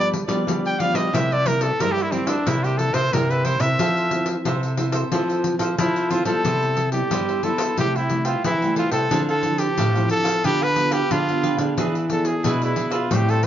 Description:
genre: samba and choro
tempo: 90 BPM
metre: 4/4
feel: straight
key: F major, C major from 6.4 s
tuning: A4 = 440 Hz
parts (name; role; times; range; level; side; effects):
- clear trumpet; melody; 0.0-13.5 s; C4 to G5; -22 LUFS; equal; tape echo
- cavaquinho; accompaniment; 0.0-13.5 s; D4 to G5; -30 LUFS; right 4 dB; none
- nylon-string guitar; accompaniment; 0.0-13.5 s; G2 to A4; -28 LUFS; equal; none
- nylon-string guitar; bass; 0.0-13.5 s; A2 to G3; -23 LUFS; equal; none
- pandeiro; percussion; 0.1-13.5 s; none; -28 LUFS; left 3 dB; none
room: wet small room reverb, RT60 0.5 s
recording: heard from further back in the room, nothing above 7.5 kHz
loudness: -19 LUFS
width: side -10 dB against mid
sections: 0.0-6.4 A section; 6.4-13.5 B section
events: trumpet solo 0.0-6.4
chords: 0.0 G7; 1.1 C7; 3.8 Fmaj7; 6.4 Cmaj7; 7.8 Am7/C; 9.1 Dm9; 10.4 G7/D; 11.8 E7

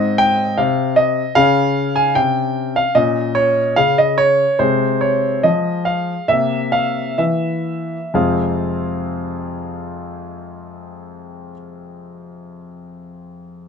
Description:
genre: classical-period piano sonatina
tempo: 60-78 BPM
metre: 4/4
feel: rubato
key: F minor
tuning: A4 = 440 Hz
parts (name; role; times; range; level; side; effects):
- clear grand piano; solo; 0.0-13.7 s; F2 to Ab5; -16 LUFS; equal; none
room: light reverb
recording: close, detailed microphones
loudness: -15 LUFS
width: side -6 dB against mid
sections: 0.0-8.2 A section; 8.2-11.9 B section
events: slowing down 0.0-8.2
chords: 0.0 Ab; 1.4 Dbmaj7#11; 3.0 Bbmadd11; 4.6 Fm/C; 6.3 C7; 8.2 Fm

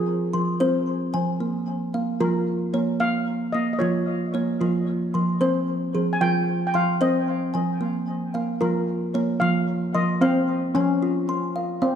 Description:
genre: world meditative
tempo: 75 BPM (dotted quarters)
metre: 6/8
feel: straight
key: F minor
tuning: A4 = 440 Hz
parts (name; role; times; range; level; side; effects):
- steel pan; melody; 0.0-12.0 s; C4 to Ab5; -26 LUFS; left 1 dB; diffuse ambient delay
- kalimba; arpeggios; 0.0-12.0 s; F3 to C6; -22 LUFS; right 1 dB; diffuse ambient delay
room: wet scoring stage reverb, RT60 1.9 s, studio ambience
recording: dark, warm production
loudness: -21 LUFS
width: side -8 dB against mid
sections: 0.0-11.0 A section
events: none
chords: 0.0 Fm; 1.4 Bbm; 4.6 Fm; 7.8 Bbm; 9.4 Fm

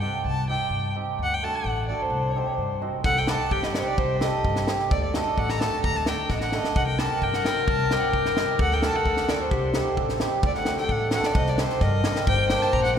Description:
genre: klezmer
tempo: 130 BPM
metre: 2/4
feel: straight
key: C dorian sharp4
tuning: A4 = 439 Hz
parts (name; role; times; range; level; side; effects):
- dark violin; melody; 0.0-13.0 s; C5 to Bb5; -28 LUFS; equal; none
- cimbalom; accompaniment; 0.0-13.0 s; A3 to A4; -29 LUFS; right 2 dB; none
- upright bass; bass; 0.0-13.0 s; G1 to G2; -28 LUFS; equal; none
- tight funk drum kit; drums; 3.0-12.9 s; kick drum, snare drum; -27 LUFS; equal; none
- warm clarinet; second line; 3.1-13.0 s; G4 to C5; -28 LUFS; left 3 dB; none
room: wet cathedral reverb, RT60 4.8 s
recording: recorded in a church or concert hall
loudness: -22 LUFS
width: side -8 dB against mid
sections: 0.0-3.0 A section; 3.0-10.4 A section; 10.4-13.0 B section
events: drum fill 6.3-6.8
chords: 0.0 Cm; 1.2 D; 2.1 Cm; 4.9 D; 6.8 Cm; 8.6 D; 9.5 Cm; 10.4 D; 11.4 Cm; 12.3 Gm

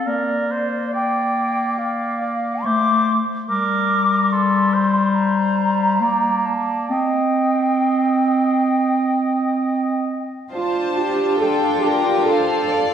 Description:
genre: cinematic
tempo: 65-73 BPM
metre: 4/4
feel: rubato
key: unclear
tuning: A4 = 440 Hz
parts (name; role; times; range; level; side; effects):
- bright clarinet; second line; 0.0-10.2 s; G3 to C4; -20 LUFS; equal; none
- mellow concert flute; second line; 0.0-10.0 s; D5 to D6; -21 LUFS; equal; none
- warm oboe; second line; 0.0-10.2 s; A4 to Eb5; -25 LUFS; right 1 dB; none
- rich studio violin section; melody; 10.5-12.9 s; F5 to A5; -24 LUFS; left 6 dB; none
- rich studio violin section; second line; 10.5-12.9 s; F4 to D5; -23 LUFS; left 3 dB; none
- dark chamber viola section; accompaniment; 10.5-12.9 s; D4; -24 LUFS; right 2 dB; none
- dark studio cello section; bass; 10.5-12.9 s; F4 to A4; -20 LUFS; right 3 dB; none
room: wet scoring stage reverb, RT60 1.7 s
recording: heard from further back in the room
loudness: -17 LUFS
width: side -8 dB against mid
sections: 0.0-10.5 A section; 10.5-12.9 A section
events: none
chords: 0.1 Bb; 3.5 Gmadd9; 6.9 Cm; 10.5 Dm7

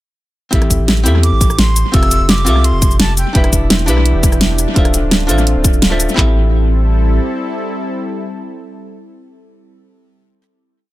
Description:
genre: liquid drum and bass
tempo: 170 BPM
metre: 4/4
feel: straight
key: A minor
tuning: A4 = 440 Hz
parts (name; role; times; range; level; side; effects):
- archtop guitar, miked and amplified; accompaniment; 0.5-10.5 s; C4 to E5; -19 LUFS; left 1 dB; analog delay
- saturated sub bass; bass; 0.5-7.2 s; D1 to E2; -14 LUFS; equal; none
- pop drum kit; drums; 0.5-6.3 s; handclaps, kick drum; -14 LUFS; equal; none
- pop drum kit; drums; 0.5-6.2 s; cabasa, hi-hat, rim click, snare drum; -15 LUFS; equal; dub echo
- breathy jazz flute; melody; 1.2-3.5 s; G5 to E6; -22 LUFS; right 1 dB; dub echo
- lush unison pad; sustained chords; 3.7-9.8 s; E3 to A4; -23 LUFS; left 1 dB; chorus, sidechain pumping
room: little or no reverb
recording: echo-heavy mix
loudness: -11 LUFS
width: side -16 dB against mid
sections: 0.5-6.2 drop; 6.2-9.0 final chord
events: drop 0.5-6.2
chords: 0.5 Am7; 1.9 Fmaj9; 3.4 Em7; 4.8 Dm9; 6.2 Am7

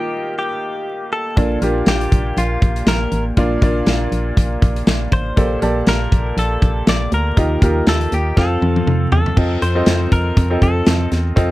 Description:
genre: piano-driven pop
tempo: 120 BPM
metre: 4/4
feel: swing 56% on 16ths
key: Bb major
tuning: A4 = 440 Hz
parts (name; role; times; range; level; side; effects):
- direct-recorded clean electric guitar; melody; 0.0-11.1 s; F4 to D5; -23 LUFS; left 1 dB; none
- bright upright piano; accompaniment; 0.0-11.5 s; Bb2 to A5; -21 LUFS; equal; none
- organ-like FM bass; bass; 1.4-11.5 s; A1 to F2; -19 LUFS; equal; none
- modern studio drum kit; drums; 1.4-11.5 s; crash cymbal, hi-hat, kick drum, snare drum, toms; -17 LUFS; equal; none
room: little or no reverb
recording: vinyl crackle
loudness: -14 LUFS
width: side -17 dB against mid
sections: 0.0-9.4 A section; 9.4-11.5 B section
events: drum fill 8.4-9.4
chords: 0.0 Ebadd9; 1.4 Bb; 5.4 Gmadd9/Bb; 7.4 Ebadd9; 8.4 F; 9.4 F7

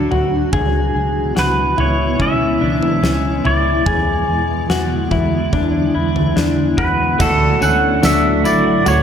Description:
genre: dream pop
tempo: 72 BPM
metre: 4/4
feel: straight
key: D lydian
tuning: A4 = 440 Hz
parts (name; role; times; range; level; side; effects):
- pedal steel guitar; melody; 0.0-9.0 s; A4 to F#5; -19 LUFS; right 1 dB; digital delay
- granular cloud pad; sustained chords; 0.0-9.0 s; A2 to F#4; -20 LUFS; equal; built-in reverb
- clean electric guitar; arpeggios; 0.0-9.0 s; C#4 to G#4; -20 LUFS; left 4 dB; lush chorus, digital delay
- vintage muted fingered electric bass; bass; 0.0-9.0 s; A1 to E2; -21 LUFS; equal; none
- huge arena drum kit; drums; 0.1-9.0 s; crash cymbal, kick drum, snare drum, tambourine, toms; -22 LUFS; right 1 dB; none
- electric guitar through a small old amp; accompaniment; 7.2-9.0 s; D3 to F#4; -22 LUFS; right 5 dB; tremolo, analog chorus
- vibraphone with soft mallets; texture; 7.2-9.0 s; A4 to C#5; -25 LUFS; right 7 dB; digital delay
room: moderate lush hall reverb, RT60 2.5 s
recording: none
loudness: -14 LUFS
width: side -8 dB against mid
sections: 0.0-7.2 A section; 7.2-9.0 B section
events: none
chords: 0.0 D; 0.5 C#m7; 3.9 E7; 7.2 D

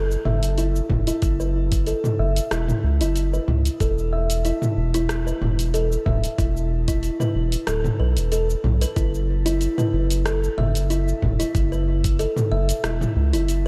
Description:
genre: organic downtempo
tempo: 93 BPM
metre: 4/4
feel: swing 54% on 16ths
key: unclear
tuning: A4 = 441 Hz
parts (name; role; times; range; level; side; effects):
- kalimba; arpeggios; 0.0-13.7 s; E4 to E5; -28 LUFS; equal; low-pass filter, delay, shimmer reverb
- round analog bass; bass; 0.0-13.7 s; D1 to C#2; -24 LUFS; equal; tube saturation, sidechain pumping
- deep house drum kit; drums; 0.1-13.6 s; cabasa, hi-hat, rim click, toms; -29 LUFS; equal; none
- electronic kick drum; drums; 0.9-12.2 s; none; -25 LUFS; equal; none
room: light reverb, digital ambience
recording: dark, warm production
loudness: -22 LUFS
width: mono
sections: 0.0-13.7 A section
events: filter sweep on kalimba 0.0-13.7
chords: 0.0 F#7(no3); 3.8 E5; 9.0 F#7(no3)

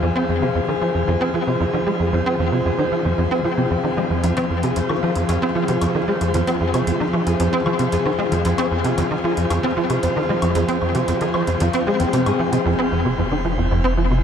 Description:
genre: ambient, sequencer-driven space music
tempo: 114 BPM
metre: 4/4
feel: straight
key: F minor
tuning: A4 = 436 Hz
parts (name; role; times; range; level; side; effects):
- concert harp; arpeggios; 0.0-14.2 s; F3 to C5; -22 LUFS; left 1 dB; auto-pan, ping-pong delay
- tight sequencer bass; riff; 0.0-14.2 s; F2 to C4; -20 LUFS; equal; ensemble chorus, ping-pong delay
- electronic hi-hat and woodblock; percussion; 4.2-12.6 s; none; -33 LUFS; left 4 dB; ping-pong delay
- warm sub bass; bass; 12.7-14.2 s; F1; -23 LUFS; equal; none
room: wet shimmer reverb, RT60 7.7 s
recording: dark, warm production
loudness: -17 LUFS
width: side -8 dB against mid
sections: 0.0-12.7 A section; 12.7-14.2 B section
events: none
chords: 0.0 Fm

